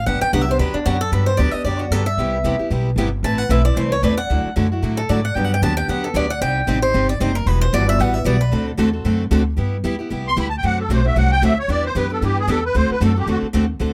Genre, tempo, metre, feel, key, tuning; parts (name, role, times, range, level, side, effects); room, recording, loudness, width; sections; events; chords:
acoustic string swing (jazz manouche); 227 BPM; 4/4; swing 56% on 8ths; G major; A4 = 440 Hz
picked swing-style acoustic guitar; second line; 0.0-8.7 s; D4 to A5; -24 LUFS; equal
upright bass; bass; 0.0-13.9 s; E1 to A2; -22 LUFS; equal
picked steel-string acoustic guitar; accompaniment; 0.1-13.9 s; C3 to B4; -25 LUFS; equal
picked steel-string acoustic guitar; accompaniment; 0.1-13.9 s; C3 to C5; -29 LUFS; equal
musette accordion; melody; 10.3-13.4 s; F#4 to C6; -23 LUFS; equal
little or no reverb; close, detailed microphones; -19 LUFS; mono
0.0-1.1 A section; 1.1-9.6 A section; 9.6-13.9 A section
steel-string acoustic guitar solo 0.0-9.6; accordion solo 9.6-13.9
0.1 Gmaj7; 2.2 Cmaj7; 3.2 Amadd9; 4.3 Dadd9; 5.4 Gmaj7; 6.4 Cm; 7.5 Emadd9; 8.5 D7; 9.6 G6; 10.6 D7; 11.7 Em7; 12.7 D7